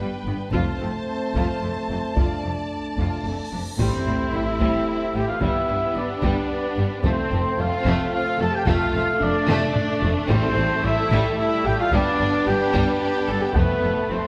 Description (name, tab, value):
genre	cinematic, epic orchestral film score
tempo	111 BPM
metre	3/4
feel	straight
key	A minor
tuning	A4 = 440 Hz
part	warm symphonic violin section	melody	0.0-14.3 s	A3 to A5	-34 LUFS	equal	none
part	rich symphonic violin section	second line	0.0-14.2 s	G3 to D5	-33 LUFS	equal	none
part	rich symphonic viola section	accompaniment	0.0-14.3 s	A3 to A4	-31 LUFS	equal	none
part	mellow French horn section	sustained chords	0.0-14.3 s	G3 to B4	-32 LUFS	equal	none
part	rich symphonic cello section	bass	0.0-14.2 s	F2 to A2	-31 LUFS	equal	none
part	rich symphonic double bass section	bass	0.0-14.2 s	F1 to A1	-30 LUFS	equal	none
part	taiko ensemble	drums	0.5-14.1 s	none	-29 LUFS	equal	none
part	cymbal swell and sub drop	sound effects	3.2-5.4 s	none	-36 LUFS	equal	none
part	mellow trumpet section	stabs	3.8-14.3 s	B4 to A5	-28 LUFS	equal	none
part	timpani	percussion	10.3-11.1 s	A2	-32 LUFS	equal	none
room	wet scoring stage reverb, RT60 1.5 s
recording	none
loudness	-22 LUFS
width	mono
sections	0.0-3.8 A section; 3.8-14.3 B section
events	cymbal swell 3.2-3.8; impact 3.8-5.4; drum fill 9.5-10.3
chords	0.0 G; 0.5 F; 2.2 Dm/F; 3.8 Am7; 5.4 G; 7.0 F; 8.7 Dm/F; 10.3 Am7; 11.9 G; 13.6 F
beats	| 0.54 1.08 1.62 | 2.17 2.71 3.25 | 3.79 4.33 4.88 | 5.42 5.96 6.50 | 7.05 7.59 8.13 | 8.67 9.21 9.76 | 10.30 10.84 11.38 | 11.92 12.47 13.01 | 13.55 14.09